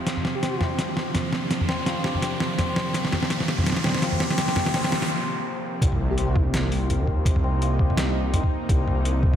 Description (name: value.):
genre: half-time drum and bass.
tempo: 167 BPM.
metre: 4/4.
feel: swing 57% on 16ths, half-time.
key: C minor.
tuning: A4 = 440 Hz.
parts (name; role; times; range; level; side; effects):
bowed-like drone; sustained chords; 0.0-9.4 s; C3 to Eb4; -31 LUFS; right 1 dB; built-in reverb, sidechain pumping.
santur; arpeggios; 0.0-9.4 s; C4 to G4; -31 LUFS; left 3 dB; analog delay.
riser, noise sweep and impact; sound effects; 0.0-7.3 s; none; -33 LUFS; equal; none.
boom bap sampler-style drum kit; drums; 0.1-9.4 s; hi-hat, snare drum, toms; -25 LUFS; equal; small room ambience.
airy dreamy lead; melody; 0.4-0.6, 6.1-6.4 s; G4; -34 LUFS; equal; chorus, cassette tape, tape echo.
dark detuned saw bass; bass; 5.8-9.4 s; C2 to Eb2; -24 LUFS; equal; tube saturation.
electronic kick drum; drums; 5.8-9.3 s; none; -22 LUFS; equal; small room ambience.
room: wet lush hall reverb, RT60 1.8 s.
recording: dreamy mix soaked in reverb.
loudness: -21 LUFS.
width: side -10 dB against mid.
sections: 0.0-5.8 A section; 5.8-9.4 B section.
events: build-up 0.0-5.8; drum fill 0.0-5.1; riser 0.0-5.1; noise sweep 4.4-5.8; break 5.1-5.8; drop 5.8-9.4; impact 5.8-7.3.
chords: 0.1 Bb; 5.8 Cm.